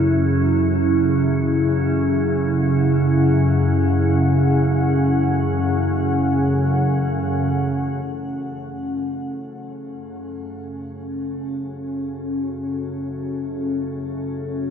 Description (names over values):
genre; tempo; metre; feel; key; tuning
dark ambient drone; free time; none; none; F# minor; A4 = 437 Hz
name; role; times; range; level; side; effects
deep dark ambient pad; sustained chords; 0.0-14.7 s; F#3 to F#5; -22 LUFS; equal; chorus, built-in reverb, shimmer reverb
organ-like drone; drone; 0.0-14.7 s; F#2 to C#3; -20 LUFS; equal; ensemble chorus, built-in reverb
room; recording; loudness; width
wet cathedral reverb, RT60 6.2 s; in a vast, echoing space, cassette tape, nothing above 7.9 kHz; -18 LUFS; side -8 dB against mid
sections
0.0-8.1 A section; 8.1-14.7 B section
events
none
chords
0.0 F#m7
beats
free time